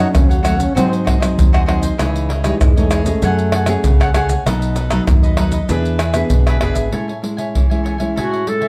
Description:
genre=samba and choro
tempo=97 BPM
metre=4/4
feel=straight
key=E major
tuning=A4 = 441 Hz
part: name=breathy trombone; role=second line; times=0.0-4.0 s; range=F#3 to D#4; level=-24 LUFS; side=equal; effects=none
part: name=cavaquinho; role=accompaniment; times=0.0-8.7 s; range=D4 to G#5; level=-26 LUFS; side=equal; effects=none
part: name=nylon-string guitar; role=accompaniment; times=0.0-8.7 s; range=F#2 to G#4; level=-23 LUFS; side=equal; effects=none
part: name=fingered electric bass with an envelope filter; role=bass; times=0.0-6.9 s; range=F#1 to G#2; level=-22 LUFS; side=equal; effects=none
part: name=maracas, surdo, pandeiro and tamborim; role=percussion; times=0.1-8.7 s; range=none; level=-19 LUFS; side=equal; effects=none
part: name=warm clarinet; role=melody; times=8.2-8.7 s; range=F#4 to A4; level=-21 LUFS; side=equal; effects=none
room=moderate studio reverb, RT60 0.8 s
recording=none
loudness=-16 LUFS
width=mono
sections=0.0-6.9 A section; 6.9-8.7 B section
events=trombone solo 0.0-6.9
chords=0.0 F#m; 0.8 G#7; 2.0 C#madd9; 3.2 F#madd9; 4.5 B7; 5.7 E7; 6.9 Amaj7

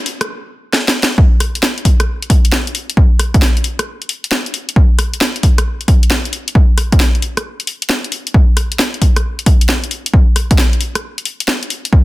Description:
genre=UK garage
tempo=134 BPM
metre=4/4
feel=swing 66% on 16ths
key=none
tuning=none
part: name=garage drum kit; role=drums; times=0.1-11.9 s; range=hi-hat, rim click, snare drum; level=-17 LUFS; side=equal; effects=none
part: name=electronic kick drum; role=drums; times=1.2-12.0 s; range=none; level=-10 LUFS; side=equal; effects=high-pass filter on kick, high-pass filter on room
room=little or no reverb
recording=dense, heavily limited modern master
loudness=-12 LUFS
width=side -18 dB against mid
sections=0.0-1.2 A section; 1.2-12.0 B section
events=build-up 0.0-1.2; drum fill 0.7-1.2; drop 1.2-12.0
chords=none

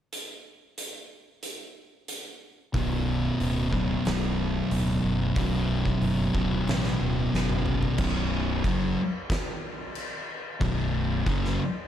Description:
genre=stoner and doom metal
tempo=92 BPM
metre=4/4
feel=straight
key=B minor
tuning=A4 = 441 Hz
part: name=oversized low-tuned drum kit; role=drums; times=0.1-11.5 s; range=crash cymbal, hi-hat, kick drum, snare drum, toms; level=-32 LUFS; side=equal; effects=none
part: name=thick fuzz guitar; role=riff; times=2.7-11.6 s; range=B1 to F#3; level=-28 LUFS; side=left 5 dB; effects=distortion
part: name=thick fuzz guitar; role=riff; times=2.7-11.6 s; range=B1 to F#3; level=-30 LUFS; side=right 9 dB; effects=distortion
part: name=fuzz fingered electric bass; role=bass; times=2.7-11.6 s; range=B0 to A1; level=-30 LUFS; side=equal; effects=overdrive
room=little or no reverb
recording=dark, warm production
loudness=-25 LUFS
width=side -10 dB against mid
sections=0.1-2.7 A section; 2.7-8.0 B section; 8.0-11.9 C section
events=drum fill 7.3-8.0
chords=0.1 N.C.; 2.7 Bm; 8.0 B5

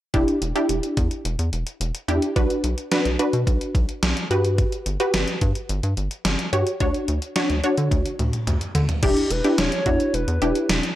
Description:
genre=synth-pop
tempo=108 BPM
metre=4/4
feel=straight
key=E dorian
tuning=A4 = 441 Hz
part: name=wide unison pluck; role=accompaniment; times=0.1-10.8 s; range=D4 to C#5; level=-23 LUFS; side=equal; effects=none
part: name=rubbery square bass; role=bass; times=0.1-10.8 s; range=E1 to D3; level=-24 LUFS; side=equal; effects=none
part: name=gated 80s digital drum machine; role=drums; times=0.1-11.0 s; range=crash cymbal, hi-hat, kick drum, snare drum, toms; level=-24 LUFS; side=equal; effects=gated reverb, gated reverb snare, overdrive
part: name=hollow clarinet-like synth lead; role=melody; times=9.0-10.7 s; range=G4 to C#5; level=-25 LUFS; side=left 1 dB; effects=chorus, analog delay
room=little or no reverb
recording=dry, gritty hardware recording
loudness=-20 LUFS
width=side -14 dB against mid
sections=0.1-9.0 A section; 9.0-11.0 B section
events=drum fill 7.9-9.0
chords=0.1 Em7; 2.4 Bm; 4.3 Gmaj7; 6.8 Dmaj7; 9.0 Em7

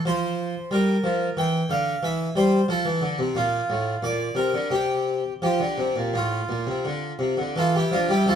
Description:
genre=classical, baroque-style suite movement for harpsichord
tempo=82-92 BPM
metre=4/4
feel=rubato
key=F major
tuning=A4 = 439 Hz
part: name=harpsichord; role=solo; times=0.1-8.4 s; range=F2 to G5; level=-21 LUFS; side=equal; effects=none
room=moderate stone room reverb, RT60 1.1 s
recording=heard from further back in the room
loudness=-22 LUFS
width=side -8 dB against mid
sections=0.0-8.3 A section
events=none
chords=0.1 Bb5/F; 1.4 Dm11; 2.7 F; 4.0 Bbadd9; 4.7 N.C.; 5.4 F

